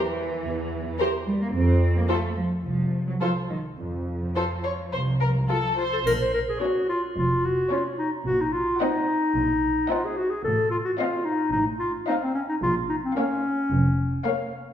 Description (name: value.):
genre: cinematic, playful, whimsical film cue.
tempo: 110 BPM.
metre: 4/4.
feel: straight.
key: Bb minor.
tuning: A4 = 440 Hz.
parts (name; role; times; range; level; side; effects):
dark studio cello section; bass; 0.0-14.1 s; F2 to C4; -30 LUFS; right 2 dB; none.
warm studio double bass section; bass; 0.4-14.1 s; F1 to F2; -27 LUFS; right 1 dB; none.
rich studio violin section; melody; 1.0-14.7 s; A4 to Gb5; -31 LUFS; left 3 dB; none.
warm studio violin section; second line; 1.0-14.7 s; A4 to Eb5; -33 LUFS; left 4 dB; none.
rich studio viola section; accompaniment; 1.0-14.7 s; Bb3 to G4; -32 LUFS; right 1 dB; none.
clear clarinet; second line; 5.8-14.2 s; C4 to C5; -24 LUFS; left 1 dB; none.
triangle; percussion; 6.1-7.1 s; none; -43 LUFS; left 1 dB; none.
room: wet recital hall reverb, RT60 1.7 s.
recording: recorded in a church or concert hall.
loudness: -22 LUFS.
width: side -10 dB against mid.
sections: 0.0-6.1 A section; 6.1-14.7 B section.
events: none.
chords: 0.0 C/E (rootless); 1.5 F5; 6.1 Bbm; 8.3 Cm7b5/Bb; 10.5 F7/A; 12.6 Bbm.